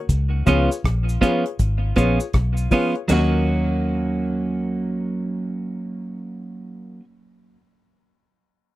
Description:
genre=roots reggae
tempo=80 BPM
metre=4/4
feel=swing 63% on 16ths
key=Eb minor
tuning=A4 = 438 Hz
part: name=vintage muted fingered electric bass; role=bass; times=0.1-7.0 s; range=Ab1 to Eb2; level=-22 LUFS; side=equal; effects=none
part: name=deep reggae drum kit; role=drums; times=0.1-3.3 s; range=hi-hat, kick drum, ride cymbal, rim click, snare drum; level=-22 LUFS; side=equal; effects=none
part: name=cabasa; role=percussion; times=0.1-3.4 s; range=none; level=-38 LUFS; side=equal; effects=none
part: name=clean electric guitar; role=accompaniment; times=0.5-7.0 s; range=F3 to Gb4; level=-22 LUFS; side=right 2 dB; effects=tape echo
part: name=dark grand piano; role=stabs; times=0.5-7.0 s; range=Eb4 to Db5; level=-28 LUFS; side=left 7 dB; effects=none
room=moderate small room reverb, RT60 0.5 s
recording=rough home demo mix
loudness=-19 LUFS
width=side -16 dB against mid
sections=0.0-3.1 A section; 3.1-6.1 B section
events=none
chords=0.1 Db7; 3.1 Ebm7

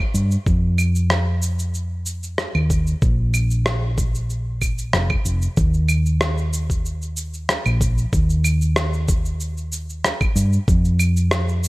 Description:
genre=sunset chillout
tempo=94 BPM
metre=4/4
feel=straight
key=Eb major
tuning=A4 = 440 Hz
part: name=hollow-body short-scale fingered electric bass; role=bass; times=0.1-11.7 s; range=F1 to G2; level=-19 LUFS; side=equal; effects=none
part: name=electronic cabasa, claves and rim click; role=drums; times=0.1-11.7 s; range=none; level=-24 LUFS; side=equal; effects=none
part: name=electronic kick drum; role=drums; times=0.5-10.8 s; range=none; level=-20 LUFS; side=equal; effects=none
room=little or no reverb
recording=none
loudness=-18 LUFS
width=side -21 dB against mid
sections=0.0-5.6 A section; 5.6-11.7 B section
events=none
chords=none

